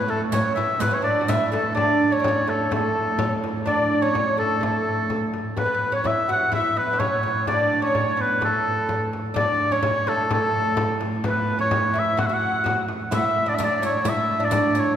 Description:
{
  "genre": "medieval dance",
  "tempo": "127 BPM",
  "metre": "2/4",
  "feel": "straight",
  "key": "A major",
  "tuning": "A4 = 441 Hz",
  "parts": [
    { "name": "clear oboe", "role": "melody", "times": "0.0-14.9 s", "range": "A4 to F#5", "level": "-23 LUFS", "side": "equal", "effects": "none" },
    { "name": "alto recorder", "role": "second line", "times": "0.0-15.0 s", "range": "G#4 to F#5", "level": "-29 LUFS", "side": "left 3 dB", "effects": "none" },
    { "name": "oud", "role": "second line", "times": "0.0-15.0 s", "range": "A3 to F#4", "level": "-27 LUFS", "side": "right 4 dB", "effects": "none" },
    { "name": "rich viola da gamba", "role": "drone", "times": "0.0-15.0 s", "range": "A2", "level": "-31 LUFS", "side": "right 1 dB", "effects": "none" },
    { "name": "frame drum", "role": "percussion", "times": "0.1-15.0 s", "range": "none", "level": "-29 LUFS", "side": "left 2 dB", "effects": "none" },
    { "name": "riq", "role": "percussion", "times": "0.3-1.6, 13.1-15.0 s", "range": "none", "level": "-33 LUFS", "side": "right 3 dB", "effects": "none" }
  ],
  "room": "wet church reverb, RT60 3.3 s",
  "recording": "recorded in a church or concert hall",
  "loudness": "-20 LUFS",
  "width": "side -9 dB against mid",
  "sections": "0.0-1.8 A section; 1.8-9.4 B section; 9.4-15.0 B section",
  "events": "none",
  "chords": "none",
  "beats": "0.32 | 0.80 1.28 | 1.76 2.24 | 2.71 3.19 | 3.67 4.14 | 4.62 5.10 | 5.57 6.05 | 6.52 6.99 | 7.47 7.94 | 8.41 8.88 | 9.36 9.83 | 10.30 10.77 | 11.24 11.71 | 12.18 12.65 | 13.12 13.59 | 14.05 14.52"
}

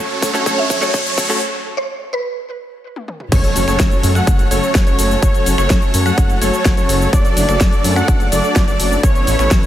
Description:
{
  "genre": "EDM, festival progressive house",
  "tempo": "126 BPM",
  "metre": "4/4",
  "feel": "straight",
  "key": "F# minor",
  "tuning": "A4 = 436 Hz",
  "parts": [
    { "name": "direct-recorded clean electric guitar", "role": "accompaniment", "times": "0.0-1.4 s", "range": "A3 to A4", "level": "-25 LUFS", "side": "right 1 dB", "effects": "sidechain pumping, tape echo" },
    { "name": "rich chamber string section", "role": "sustained chords", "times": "0.0-9.7 s", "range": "F#2 to D5", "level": "-26 LUFS", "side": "left 2 dB", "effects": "sidechain pumping" },
    { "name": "wide unison lead", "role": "arpeggios", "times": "0.0-9.7 s", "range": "C#5 to F#5", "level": "-21 LUFS", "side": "right 1 dB", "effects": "sidechain pumping, tape echo" },
    { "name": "big supersaw lead", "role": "riff", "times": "0.0-9.7 s", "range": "E3 to F#5", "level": "-22 LUFS", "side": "equal", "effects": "sidechain pumping, tape echo" },
    { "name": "riser and impact", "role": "sound effects", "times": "0.0-5.2 s", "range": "none", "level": "-23 LUFS", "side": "equal", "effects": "none" },
    { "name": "big-room dance drum kit", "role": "drums", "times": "0.1-9.7 s", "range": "crash cymbal, finger snaps, hi-hat, shaker, snare drum, toms", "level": "-22 LUFS", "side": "left 1 dB", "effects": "overdrive" },
    { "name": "electronic kick drum", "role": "drums", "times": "0.2-9.6 s", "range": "none", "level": "-14 LUFS", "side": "equal", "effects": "overdrive" },
    { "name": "mallet-like synth pluck", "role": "melody", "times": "0.6-2.8 s", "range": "B4 to E5", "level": "-24 LUFS", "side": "right 1 dB", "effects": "ensemble chorus, tape echo" },
    { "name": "wide detuned saw bass", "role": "bass", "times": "3.3-9.6 s", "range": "F#1 to F#2", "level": "-18 LUFS", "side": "equal", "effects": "chorus, sidechain pumping" }
  ],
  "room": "light reverb",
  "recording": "high-pass filter",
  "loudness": "-13 LUFS",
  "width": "side -12 dB against mid",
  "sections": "0.0-3.3 A section; 3.3-9.7 B section",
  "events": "build-up 0.0-3.3; drum fill 0.0-1.4, 3.0-3.3; riser 0.0-1.4; filter sweep 0.0-3.3; break 1.4-3.3; drop 3.3-9.7; impact 3.3-5.2",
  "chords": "0.0 D/F#; 1.4 N.C.; 3.3 F#m; 7.1 D/F#; 9.0 Aadd9",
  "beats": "0.46 0.94 | 1.42 1.89 2.37 2.84 | 3.32 3.80 4.27 4.75 | 5.22 5.70 6.18 6.65 | 7.13 7.61 8.08 8.56 | 9.03 9.51"
}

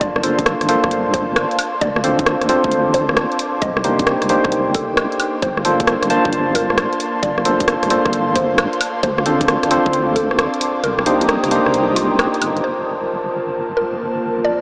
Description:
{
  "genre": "UK garage, two-step garage",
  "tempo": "133 BPM",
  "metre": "4/4",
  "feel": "swing 67% on 16ths",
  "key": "G minor",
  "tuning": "A4 = 440 Hz",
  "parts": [
    { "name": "mallet-like synth pluck", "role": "melody", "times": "0.0-14.6 s", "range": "F4 to Eb5", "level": "-28 LUFS", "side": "equal", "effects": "none" },
    { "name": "airy breathy pad", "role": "sustained chords", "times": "0.0-14.6 s", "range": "F4 to Eb6", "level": "-27 LUFS", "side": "equal", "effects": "chorus, sidechain pumping" },
    { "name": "percussive organ stab", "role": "stabs", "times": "0.0-12.6 s", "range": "Bb3 to A5", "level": "-21 LUFS", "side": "equal", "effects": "chorus, analog delay" },
    { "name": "deep soft wobble bass", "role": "bass", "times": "0.0-14.6 s", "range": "G1 to D2", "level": "-27 LUFS", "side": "equal", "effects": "chorus" },
    { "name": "electronic kick drum", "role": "drums", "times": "0.0-10.3 s", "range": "none", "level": "-26 LUFS", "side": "equal", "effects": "none" },
    { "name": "garage drum kit", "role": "drums", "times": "0.0-12.6 s", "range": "hi-hat, rim click, woodblock", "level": "-24 LUFS", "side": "equal", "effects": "none" },
    { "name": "deep dark ambient pad", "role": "texture", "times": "13.6-14.6 s", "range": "Bb3 to A5", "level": "-30 LUFS", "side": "equal", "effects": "chorus, built-in reverb, sidechain pumping" }
  ],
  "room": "wet huge ambient reverb, RT60 7.4 s",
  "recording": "dreamy mix soaked in reverb, small speaker sound",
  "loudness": "-17 LUFS",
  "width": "mono",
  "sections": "0.0-12.6 A section; 12.6-14.6 B section",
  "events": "kick drops out 10.8-12.6",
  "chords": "0.0 Gm11; 1.6 Dm7; 3.6 Cm9; 5.4 Gm11; 8.8 Dm7; 10.8 Cm9; 12.6 Gm11",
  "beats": "| 0.01 0.46 0.91 1.36 | 1.81 2.27 2.72 3.17 | 3.62 4.07 4.52 4.97 | 5.42 5.88 6.33 6.78 | 7.23 7.68 8.13 8.58 | 9.03 9.48 9.94 10.39 | 10.84 11.29 11.74 12.19 | 12.64 13.09 13.54 13.99 | 14.45"
}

